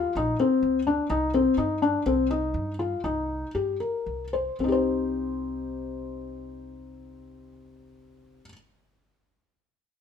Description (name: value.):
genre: contemporary instrumental, chamber music in an uneven meter.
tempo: 111-128 BPM.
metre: 7/4.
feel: straight.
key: C minor.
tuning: A4 = 439 Hz.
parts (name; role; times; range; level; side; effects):
felt-muted upright piano; arpeggios; 0.0-8.5 s; C4 to C5; -25 LUFS; left 4 dB; none.
upright bass; bass; 0.0-8.4 s; Bb1 to G2; -35 LUFS; right 2 dB; none.
room: light reverb.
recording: none.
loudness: -24 LUFS.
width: side -7 dB against mid.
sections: 0.0-4.6 A section; 4.6-8.4 B section.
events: slowing down 0.6-4.6.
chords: 0.0 Bbsus2; 1.1 Cm7; 4.6 Cm.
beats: 0.16 0.63 | 1.10 1.57 2.05 2.54 3.03 3.54 4.06 | 4.59 5.14 5.68 6.22 6.76 7.30 7.85.